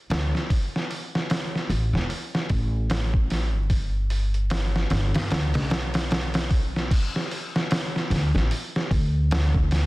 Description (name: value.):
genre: trip hop.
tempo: 75 BPM.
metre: 4/4.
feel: swing 59% on 16ths.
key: unclear.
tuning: A4 = 440 Hz.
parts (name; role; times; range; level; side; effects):
upright bass; bass; 0.1-9.9 s; E1 to G2; -24 LUFS; equal; none.
trip hop sampler-style drum kit; drums; 0.1-9.9 s; crash cymbal, hi-hat, kick drum, snare drum; -24 LUFS; equal; none.
room: little or no reverb.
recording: dense, heavily limited modern master, vinyl crackle.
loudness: -22 LUFS.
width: side -20 dB against mid.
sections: 0.0-6.9 A section; 6.9-9.9 B section.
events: none.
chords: none.